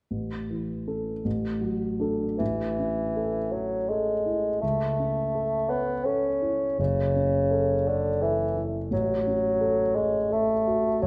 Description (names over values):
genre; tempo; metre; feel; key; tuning
classical, romantic duo for bassoon and grand piano; 74-87 BPM; 3/4; rubato; A major; A4 = 440 Hz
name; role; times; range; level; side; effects
dark grand piano; accompaniment; 0.1-11.1 s; F#1 to C#5; -30 LUFS; equal; none
dark bassoon; melody; 2.4-11.1 s; C#3 to C#4; -28 LUFS; equal; none
room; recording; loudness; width
wet recital hall reverb, RT60 1.6 s; dark, warm production; -26 LUFS; mono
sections
0.1-2.4 A section; 2.4-11.1 B section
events
none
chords
0.1 A; 1.3 D/A; 2.4 A; 4.6 A/C#; 6.8 F#m7; 8.9 F#m/A